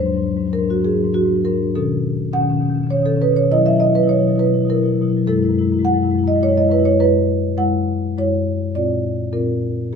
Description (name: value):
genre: classical, contemporary piece for solo marimba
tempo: 102 BPM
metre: 3/4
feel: rubato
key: E lydian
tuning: A4 = 440 Hz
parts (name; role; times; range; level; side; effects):
- marimba with soft mallets; solo; 0.0-10.0 s; F#2 to F#5; -15 LUFS; left 1 dB; none
room: moderate small room reverb, RT60 0.5 s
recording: dark, warm production, lossy compression artefacts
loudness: -15 LUFS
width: side -6 dB against mid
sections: 0.0-10.0 A section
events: none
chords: 0.0 G#7#11; 1.7 B9; 3.5 Badd11; 5.2 Eadd9/F#; 8.7 A#add9